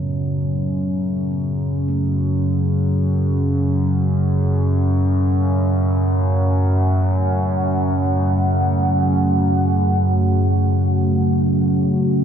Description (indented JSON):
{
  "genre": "dark ambient drone",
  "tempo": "free time",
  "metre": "none",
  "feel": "none",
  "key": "F# minor",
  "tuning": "A4 = 443 Hz",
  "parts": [
    { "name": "gamelan-type bossed gongs", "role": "arpeggios", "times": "0.0-8.7 s", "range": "A2 to B3", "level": "-37 LUFS", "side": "right 2 dB", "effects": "none" },
    { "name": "analog drone", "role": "drone", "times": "0.0-12.2 s", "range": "F#2 to C#3", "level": "-17 LUFS", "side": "equal", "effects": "chorus" },
    { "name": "bronze singing bowl", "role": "texture", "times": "0.0-12.2 s", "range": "C#5", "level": "-44 LUFS", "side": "left 7 dB", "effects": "none" },
    { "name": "deep dark ambient pad", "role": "sustained chords", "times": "6.1-12.2 s", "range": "F#2 to F#5", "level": "-21 LUFS", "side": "equal", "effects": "chorus, built-in reverb" }
  ],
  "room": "wet huge ambient reverb, RT60 8.4 s",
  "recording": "dark, warm production",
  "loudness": "-16 LUFS",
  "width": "side -8 dB against mid",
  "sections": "0.0-12.2 A section",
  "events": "none",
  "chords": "0.0 F#m",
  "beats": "free time"
}